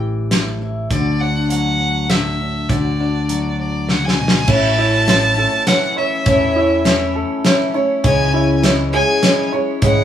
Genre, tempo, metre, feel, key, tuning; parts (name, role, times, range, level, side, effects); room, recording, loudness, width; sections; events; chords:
indie folk with a building arrangement; 101 BPM; 3/4; straight; A major; A4 = 439 Hz
fingerpicked steel-string acoustic guitar; accompaniment; 0.0-4.5 s; A2 to G4; -22 LUFS; left 4 dB
picked electric bass; bass; 0.0-10.0 s; G#1 to E2; -21 LUFS; equal
loose indie drum kit; drums; 0.3-10.0 s; crash cymbal, hi-hat, kick drum, snare drum; -17 LUFS; equal
clear fiddle; melody; 0.9-10.0 s; D5 to A5; -21 LUFS; equal
picked steel-string acoustic guitar; accompaniment; 4.5-10.0 s; A2 to E4; -20 LUFS; left 5 dB
warm upright piano; arpeggios; 4.5-10.0 s; C#4 to C#5; -18 LUFS; right 2 dB
moderate large studio reverb, RT60 1.0 s; band playing live in one room; -14 LUFS; side -10 dB against mid
0.0-4.5 A section; 4.5-10.0 B section
drum fill 3.9-4.5
0.0 A5; 0.9 D; 4.5 A; 8.0 C#m